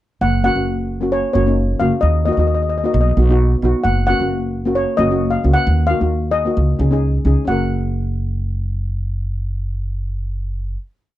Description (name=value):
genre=calypso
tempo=133 BPM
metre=4/4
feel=straight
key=F# major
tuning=A4 = 437 Hz
part: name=steel pan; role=melody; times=0.2-10.8 s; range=C#5 to F#5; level=-20 LUFS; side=left 2 dB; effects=none
part: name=upright bass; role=bass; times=0.2-10.7 s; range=F#1 to D#2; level=-18 LUFS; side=right 1 dB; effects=none
part: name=steel pan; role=accompaniment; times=0.4-10.8 s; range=A#3 to A#4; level=-20 LUFS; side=left 1 dB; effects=none
room=little or no reverb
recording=dry, close 1970s-style studio recording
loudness=-15 LUFS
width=side -14 dB against mid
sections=0.2-7.5 verse; 7.5-11.1 final chord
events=none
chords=0.2 F#; 2.0 D#m; 3.0 B; 3.9 F#; 5.7 D#m; 6.6 C#sus2; 7.5 F#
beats=| 0.22 0.68 1.13 1.59 | 2.04 2.50 2.95 3.40 | 3.86 4.31 4.76 5.22 | 5.67 6.12 6.57 7.03 | 7.48 7.93 8.38 8.83 | 9.28 9.73 10.18 10.64